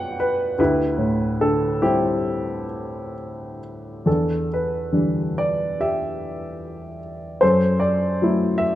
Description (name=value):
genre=classical, lyrical solo piano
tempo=64-77 BPM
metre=4/4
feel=rubato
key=E minor from 4.1 s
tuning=A4 = 439 Hz
part: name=warm baby grand piano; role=solo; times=0.0-8.8 s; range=D2 to G5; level=-20 LUFS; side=equal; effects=none
room=moderate recital hall reverb, RT60 1.4 s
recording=dark, warm production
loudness=-19 LUFS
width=side -13 dB against mid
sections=0.0-4.1 A section; 4.1-8.8 B section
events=none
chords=0.0 Gmaj7; 0.6 D9sus4; 4.1 Em7; 7.4 F#m7b5